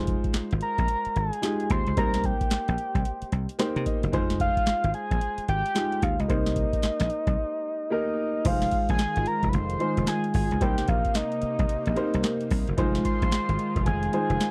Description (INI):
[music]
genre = R&B, new jack swing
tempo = 111 BPM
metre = 4/4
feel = swing 62% on 16ths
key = F minor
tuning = A4 = 439 Hz
[part]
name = warm baby grand piano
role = accompaniment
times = 0.0-14.5 s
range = Ab3 to G5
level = -33 LUFS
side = equal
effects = none
[part]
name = dry thumbed slap bass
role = bass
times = 0.0-14.4 s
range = F1 to C3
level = -30 LUFS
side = equal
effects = none
[part]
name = booming analog drum machine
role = drums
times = 0.1-14.5 s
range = crash cymbal, handclaps, hi-hat, kick drum, snare drum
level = -30 LUFS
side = equal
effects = none
[part]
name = soft octave-layered synth lead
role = melody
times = 0.6-14.5 s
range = Eb5 to C6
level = -31 LUFS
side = equal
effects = chorus, slapback echo
[part]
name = brassy analog pad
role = sustained chords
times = 8.5-14.5 s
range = C3 to F4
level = -35 LUFS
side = equal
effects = chorus, phaser
[sound]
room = little or no reverb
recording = dry, close 1970s-style studio recording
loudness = -26 LUFS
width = mono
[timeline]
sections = 0.0-8.5 A section; 8.5-14.5 B section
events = grand piano fill 3.3-4.1, 7.6-8.5; break 7.4-8.5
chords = 0.0 Fm7; 2.0 Cm7; 4.1 Fm7; 6.3 Cm7; 8.5 Fm7; 10.6 Cm7; 12.8 Fm7